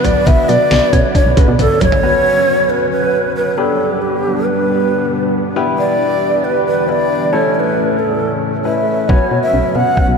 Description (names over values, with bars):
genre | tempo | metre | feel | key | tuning
synth-pop | 136 BPM | 4/4 | straight | B minor | A4 = 436 Hz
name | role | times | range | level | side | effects
breathy long shakuhachi | melody | 0.0-10.2 s | G4 to F#5 | -15 LUFS | right 1 dB | diffuse ambient delay
clear baby grand piano | accompaniment | 0.0-10.2 s | A3 to B4 | -21 LUFS | left 4 dB | none
string machine, cellos | sustained chords | 0.0-10.2 s | D3 to G4 | -20 LUFS | equal | phaser, ensemble chorus
soft round pluck | arpeggios | 0.0-1.9, 9.1-10.1 s | D3 to F#5 | -25 LUFS | right 4 dB | none
solid FM bass | bass | 0.0-1.9, 9.1-10.2 s | G1 to B2 | -17 LUFS | equal | none
detuned 8-bit digital drum machine | drums | 0.0-2.0, 9.1-10.1 s | cowbell, hi-hat, kick drum, snare drum, toms | -15 LUFS | equal | none
room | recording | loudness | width
wet cathedral reverb, RT60 5.9 s | dreamy mix soaked in reverb | -12 LUFS | side -5 dB against mid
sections
0.0-2.0 A section; 2.0-10.2 B section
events
drum fill 1.6-2.0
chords
0.3 Bmadd9; 2.0 Bsus2; 3.6 G; 5.6 Em7; 7.3 A; 9.1 Bsus2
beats
| 0.27 0.71 1.15 1.59 | 2.03 2.47 2.92 3.36 | 3.80 4.24 4.68 5.12 | 5.56 6.00 6.45 6.89 | 7.33 7.77 8.21 8.65 | 9.09 9.53 9.97